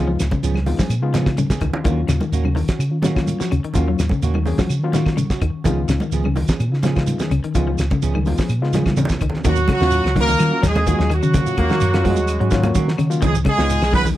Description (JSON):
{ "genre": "afrobeat", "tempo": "126 BPM", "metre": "4/4", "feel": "straight", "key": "Eb minor", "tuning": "A4 = 440 Hz", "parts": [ { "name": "overdriven reed electric piano", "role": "accompaniment", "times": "0.0-13.8 s", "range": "Gb3 to Ab4", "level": "-26 LUFS", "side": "left 6 dB", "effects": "none" }, { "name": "electric guitar at the edge of break-up", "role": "arpeggios", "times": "0.0-14.2 s", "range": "Db3 to Bb3", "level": "-24 LUFS", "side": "left 5 dB", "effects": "tremolo, slapback echo" }, { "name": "semi-hollow electric guitar", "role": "stabs", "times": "0.0-14.1 s", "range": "F3 to Ab4", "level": "-28 LUFS", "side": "right 8 dB", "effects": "spring reverb" }, { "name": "hollow-body short-scale fingered electric bass", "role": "bass", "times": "0.0-14.1 s", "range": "Cb2 to Eb3", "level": "-20 LUFS", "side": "equal", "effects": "none" }, { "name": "cloth-damped thuddy drum kit", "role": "drums", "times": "0.2-14.0 s", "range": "hi-hat, kick drum, snare drum", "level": "-22 LUFS", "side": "equal", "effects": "none" }, { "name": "claves", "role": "percussion", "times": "0.2-13.9 s", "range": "none", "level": "-37 LUFS", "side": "left 6 dB", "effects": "none" }, { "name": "shekere", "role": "percussion", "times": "0.2-14.2 s", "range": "none", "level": "-31 LUFS", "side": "right 5 dB", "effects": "none" }, { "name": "congas", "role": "percussion", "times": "0.3-14.2 s", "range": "none", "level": "-26 LUFS", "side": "right 2 dB", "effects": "none" }, { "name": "clear horn section", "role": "melody", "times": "9.5-14.0 s", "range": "Gb4 to Cb5", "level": "-21 LUFS", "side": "right 1 dB", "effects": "none" }, { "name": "breathy trombone", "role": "second line", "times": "9.5-14.1 s", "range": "Gb3 to Cb4", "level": "-27 LUFS", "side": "right 4 dB", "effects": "none" }, { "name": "clear trombone section", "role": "second line", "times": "11.6-13.1 s", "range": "Gb3 to Bb3", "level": "-27 LUFS", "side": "left 2 dB", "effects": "none" } ], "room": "little or no reverb", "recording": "dry, close 1970s-style studio recording", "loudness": "-16 LUFS", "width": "side -14 dB against mid", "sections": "0.0-9.4 A section; 9.4-14.2 B section", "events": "drum fill 1.4-1.9, 8.7-9.4", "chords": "0.0 Db7; 1.9 Ebm7; 5.6 Db7; 9.4 Ebm7; 13.2 Db7" }